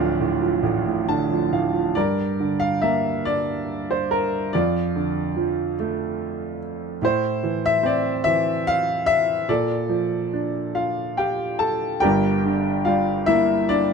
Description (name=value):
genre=classical, lyrical solo piano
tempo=48 BPM (dotted quarters)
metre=6/8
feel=rubato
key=unclear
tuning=A4 = 440 Hz
part: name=warm grand piano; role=solo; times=0.0-13.9 s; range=D1 to A5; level=-20 LUFS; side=right 1 dB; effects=none
room=little or no reverb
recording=close, detailed microphones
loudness=-20 LUFS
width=side -5 dB against mid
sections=0.0-2.0 A section; 2.0-12.0 B section; 12.0-13.9 B section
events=grand piano fill 0.7-2.0, 10.8-12.0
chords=0.0 Dm; 2.0 Gm; 4.5 Dm/F; 7.0 Am; 9.5 Bbmaj7; 12.0 Gm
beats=0.66 | 1.96 3.26 | 4.53 5.78 | 7.02 8.25 | 9.49 10.75 | 12.02 13.28